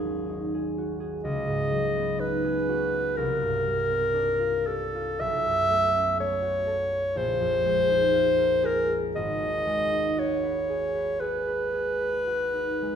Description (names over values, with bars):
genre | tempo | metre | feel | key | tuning
classical, impressionist duo for clarinet and harp | 53-64 BPM | 4/4 | rubato | unclear | A4 = 440 Hz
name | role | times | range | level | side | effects
mellow clarinet | melody | 0.0-13.0 s | G#4 to E5 | -24 LUFS | left 1 dB | none
concert harp | accompaniment | 0.0-13.0 s | G#1 to C#5 | -30 LUFS | right 2 dB | none
room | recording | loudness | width
wet recital hall reverb, RT60 1.6 s | recorded in a church or concert hall | -23 LUFS | side -8 dB against mid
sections
0.0-13.0 A section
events
none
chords
0.0 G#7sus4; 1.2 C#9sus4; 3.2 C9sus4; 5.2 B9sus4; 7.2 A#9sus4; 9.2 G#m7